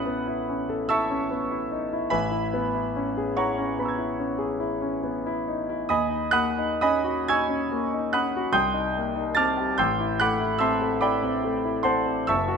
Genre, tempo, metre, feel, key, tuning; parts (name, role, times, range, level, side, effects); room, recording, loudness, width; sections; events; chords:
classical, impressionist solo piano; 48 BPM (dotted quarters); 9/8; rubato; A4 = 440 Hz
clear concert grand piano; solo; 0.0-12.6 s; F#1 to A6; -23 LUFS; equal
light reverb; close, detailed microphones; -23 LUFS; side -6 dB against mid
0.0-12.6 A section
0.0 A69; 2.1 C#m7/A; 5.9 D#m7; 8.5 Cm7; 9.8 Am7